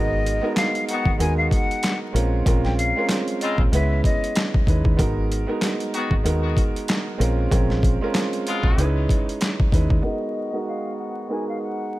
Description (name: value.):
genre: hip hop, boom-bap hip-hop.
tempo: 95 BPM.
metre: 4/4.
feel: swing 58% on 16ths.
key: G# dorian.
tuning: A4 = 440 Hz.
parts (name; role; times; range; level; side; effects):
breathy jazz flute; melody; 0.0-4.5, 10.0-12.0 s; D#5 to G#5; -27 LUFS; left 3 dB; high-pass filter, low-pass filter, ping-pong delay.
warm upright piano; accompaniment; 0.0-12.0 s; G#3 to B4; -25 LUFS; right 2 dB; high-pass filter, low-pass filter.
deep dub fingered electric bass; bass; 0.0-10.0 s; G#1 to D#2; -22 LUFS; equal; none.
boom bap sampler-style drum kit; drums; 0.3-10.0 s; handclaps, hi-hat, kick drum, snare drum; -22 LUFS; equal; overdrive.
clear horn section; stabs; 0.9-11.9 s; B2 to F#4; -32 LUFS; left 4 dB; high-pass filter, low-pass filter, ping-pong delay.
room: little or no reverb.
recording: vinyl crackle.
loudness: -19 LUFS.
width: side -17 dB against mid.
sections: 0.0-10.0 A section; 10.0-12.0 B section.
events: filter sweep 10.0-12.0.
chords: 0.0 G#m9; 2.1 A#m9; 3.7 C#m9; 5.0 G#m9; 7.2 A#m9; 8.8 C#m9; 10.0 G#m9.